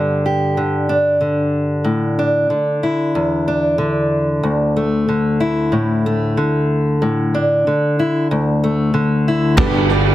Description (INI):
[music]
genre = indie folk with a building arrangement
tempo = 93 BPM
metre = 4/4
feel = straight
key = unclear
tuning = A4 = 440 Hz
[part]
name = fingerpicked steel-string acoustic guitar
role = accompaniment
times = 0.0-10.1 s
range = D2 to G4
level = -15 LUFS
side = equal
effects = none
[part]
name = dark grand piano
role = accompaniment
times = 9.6-10.1 s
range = G1 to D5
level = -21 LUFS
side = right 4 dB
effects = none
[part]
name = picked steel-string acoustic guitar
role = accompaniment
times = 9.6-10.1 s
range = G2 to G4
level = -19 LUFS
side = left 2 dB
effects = none
[part]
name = fingered electric bass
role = bass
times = 9.6-10.1 s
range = G1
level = -18 LUFS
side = right 1 dB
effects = none
[part]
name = soft-mallet drum kit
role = drums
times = 9.6-10.0 s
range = kick drum, ride cymbal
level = -16 LUFS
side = right 2 dB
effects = none
[sound]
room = light reverb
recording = dense, heavily limited modern master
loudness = -15 LUFS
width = side -14 dB against mid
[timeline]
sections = 0.0-9.6 A section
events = none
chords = 0.0 G; 1.9 Asus4; 4.4 Dsus2; 7.0 Asus4; 8.3 Dsus2; 9.6 G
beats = 0.58 1.22 | 1.86 2.51 3.15 3.80 | 4.44 5.08 5.73 6.37 | 7.01 7.66 8.30 8.94 | 9.58